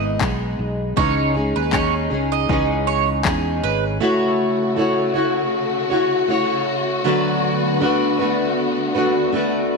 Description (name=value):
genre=acoustic pop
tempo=79 BPM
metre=4/4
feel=swing 55% on 16ths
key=unclear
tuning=A4 = 439 Hz
part: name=fingerpicked plugged-in steel-string acoustic guitar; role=accompaniment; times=0.0-9.8 s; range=G#2 to C#5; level=-19 LUFS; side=equal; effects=double-tracked left and right
part: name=mandolin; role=arpeggios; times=0.0-3.8 s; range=B4 to D#5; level=-24 LUFS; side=right 9 dB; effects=none
part: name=fingered electric bass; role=bass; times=0.0-4.0 s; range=G#1 to E2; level=-24 LUFS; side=equal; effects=none
part: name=punchy analog drum machine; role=drums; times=0.2-3.4 s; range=handclaps, kick drum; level=-23 LUFS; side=left 4 dB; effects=none
part: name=warm studio string section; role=sustained chords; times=4.0-9.8 s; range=C#3 to F#4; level=-25 LUFS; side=left 3 dB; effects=none
room=moderate echo chamber reverb, RT60 2.1 s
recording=1960s-style stereo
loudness=-17 LUFS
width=side -3 dB against mid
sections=0.0-4.0 A section; 4.0-9.8 B section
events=none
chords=0.0 Emaj7/G#; 1.0 C#madd9; 4.0 A6; 7.0 D6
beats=0.21 | 0.97 1.73 2.49 3.25 | 4.01 4.77 5.53 6.29 | 7.05 7.81 8.57 9.33